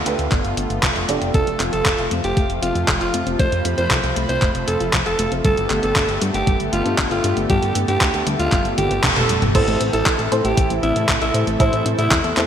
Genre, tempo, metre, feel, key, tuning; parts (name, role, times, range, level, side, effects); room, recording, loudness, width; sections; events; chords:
italo disco; 117 BPM; 4/4; straight; A minor; A4 = 439 Hz
lush unison pad; sustained chords; 0.0-12.5 s; C3 to B5; -25 LUFS; equal; chorus
dark baby grand piano; stabs; 0.0-1.3, 9.5-12.5 s; C4 to D5; -26 LUFS; right 2 dB; ensemble chorus
chorused synth bass; bass; 0.0-12.5 s; F1 to A2; -24 LUFS; equal
clean 12-bit digital drum machine; drums; 0.1-12.5 s; crash cymbal, handclaps, hi-hat, toms; -22 LUFS; equal; gated reverb
electronic kick drum; drums; 0.3-12.2 s; -21 LUFS; equal
raspy alto saxophone; melody; 1.3-12.3 s; E4 to C5; -22 LUFS; right 1 dB; ping-pong delay
soft round pluck; arpeggios; 1.3-12.5 s; G3 to F5; -28 LUFS; left 3 dB; chorus, cassette tape, ping-pong delay
wet lush hall reverb, RT60 2.1 s; bright 1980s-style digital production, vinyl crackle; -16 LUFS; side -9 dB against mid
0.0-9.5 A section; 9.5-12.5 B section
drum fill 8.8-9.5; band accent 9.0
0.0 Gadd9; 1.3 F; 5.4 Gadd9; 9.5 Am